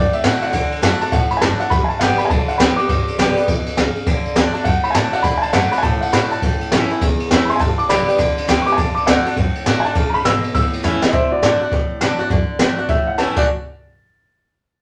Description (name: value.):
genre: rockabilly.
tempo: 204 BPM.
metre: 4/4.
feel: swing 63% on 8ths.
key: D major.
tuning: A4 = 441 Hz.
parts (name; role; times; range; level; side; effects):
dark upright piano; melody; 0.0-13.5 s; F#4 to E6; -22 LUFS; equal; none.
picked swing-style acoustic guitar; accompaniment; 0.0-13.5 s; E2 to G4; -24 LUFS; equal; none.
upright bass; bass; 0.0-13.5 s; F#1 to B2; -27 LUFS; equal; none.
jazz brush drum kit; drums; 0.1-13.4 s; crash cymbal, hi-hat, kick drum, ride cymbal, snare drum; -21 LUFS; equal; none.
room: wet studio reverb, RT60 0.6 s.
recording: none.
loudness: -17 LUFS.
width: mono.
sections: 0.0-11.1 A section; 11.1-13.5 B section; 13.5-14.7 C section.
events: drum fill 10.8, 13.2.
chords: 0.0 D; 1.7 G; 4.1 D; 6.4 A; 7.6 G; 8.8 D; 10.5 A; 11.1 D; 12.9 A; 13.3 D; 13.5 N.C..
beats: 0.24 | 0.54 0.83 1.12 1.42 | 1.71 2.00 2.30 2.59 | 2.88 3.18 3.47 3.77 | 4.06 4.36 4.65 4.95 | 5.24 5.54 5.83 6.12 | 6.42 6.71 7.01 7.30 | 7.60 7.89 8.19 8.48 | 8.78 9.07 9.37 9.66 | 9.95 10.25 10.54 10.84 | 11.13 11.42 11.72 12.01 | 12.30 12.60 12.89 13.18.